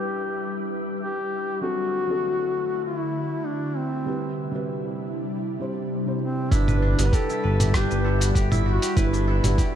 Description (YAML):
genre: organic downtempo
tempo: 98 BPM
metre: 4/4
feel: swing 53% on 16ths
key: unclear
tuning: A4 = 439 Hz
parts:
  - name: mellow duduk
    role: melody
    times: 0.0-9.8 s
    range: C4 to B4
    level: -28 LUFS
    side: left 1 dB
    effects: dub echo
  - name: felt-muted upright piano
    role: accompaniment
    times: 0.0-9.8 s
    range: F#3 to C5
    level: -33 LUFS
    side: right 1 dB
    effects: sidechain pumping, dub echo
  - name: ethereal airy pad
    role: sustained chords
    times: 0.0-9.8 s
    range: C3 to B5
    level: -31 LUFS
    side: left 1 dB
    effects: ensemble chorus, built-in reverb, sidechain pumping
  - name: wind-like tuned noise texture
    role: texture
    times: 0.0-6.5 s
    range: E4 to E5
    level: -40 LUFS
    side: equal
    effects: built-in reverb
  - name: kora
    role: arpeggios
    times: 6.5-9.8 s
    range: B3 to B4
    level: -29 LUFS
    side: right 1 dB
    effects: dub echo
  - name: smooth synth bass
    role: bass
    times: 6.5-9.6 s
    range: G1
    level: -22 LUFS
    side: equal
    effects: sidechain pumping
  - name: dusty soul sampler-style drum kit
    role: drums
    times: 6.5-9.7 s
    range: cabasa, hi-hat, rim click, toms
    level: -28 LUFS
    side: right 1 dB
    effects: overdrive
  - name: electronic kick drum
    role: drums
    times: 6.5-9.7 s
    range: none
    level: -22 LUFS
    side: equal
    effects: overdrive
room: light reverb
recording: echo-heavy mix, low-pass filter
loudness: -22 LUFS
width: side -10 dB against mid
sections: 0.0-6.5 A section; 6.5-9.8 B section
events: filter sweep on ambient pad 0.0-6.5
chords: 0.0 G6; 1.6 D7; 4.1 Cmaj7; 6.5 G6